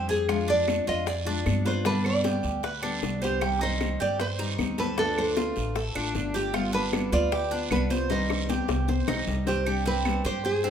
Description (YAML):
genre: latin, Cuban son and guajira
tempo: 154 BPM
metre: 4/4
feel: straight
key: C harmonic minor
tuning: A4 = 441 Hz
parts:
  - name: fingerpicked steel-string acoustic guitar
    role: accompaniment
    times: 0.0-10.7 s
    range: B2 to G4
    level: -32 LUFS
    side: left 3 dB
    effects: none
  - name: Cuban tres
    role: arpeggios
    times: 0.0-10.7 s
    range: C4 to C5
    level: -32 LUFS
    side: right 4 dB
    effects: none
  - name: upright bass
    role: bass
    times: 0.0-10.7 s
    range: G1 to G2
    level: -31 LUFS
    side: right 1 dB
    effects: none
  - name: nylon-string guitar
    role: melody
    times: 0.1-10.7 s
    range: G4 to Eb5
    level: -28 LUFS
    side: right 1 dB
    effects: none
  - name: bongos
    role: percussion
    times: 0.1-9.6 s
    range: none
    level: -35 LUFS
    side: left 7 dB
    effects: none
  - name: congas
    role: percussion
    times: 0.1-10.7 s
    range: none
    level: -34 LUFS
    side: left 4 dB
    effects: none
  - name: guiro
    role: percussion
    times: 0.1-10.7 s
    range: none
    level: -40 LUFS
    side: right 5 dB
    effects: none
  - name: claves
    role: percussion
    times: 0.3-10.2 s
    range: none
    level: -38 LUFS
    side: right 4 dB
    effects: none
room: moderate large studio reverb, RT60 0.8 s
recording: minimal, uncompressed stereo recording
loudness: -24 LUFS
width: side -8 dB against mid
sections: 0.0-9.7 A section; 9.7-10.7 A section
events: drum fill 8.1-9.7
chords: 0.3 Ddim/F; 1.9 G; 3.4 Cm; 5.0 Dm; 6.5 G7; 8.1 Cm; 9.7 Csus2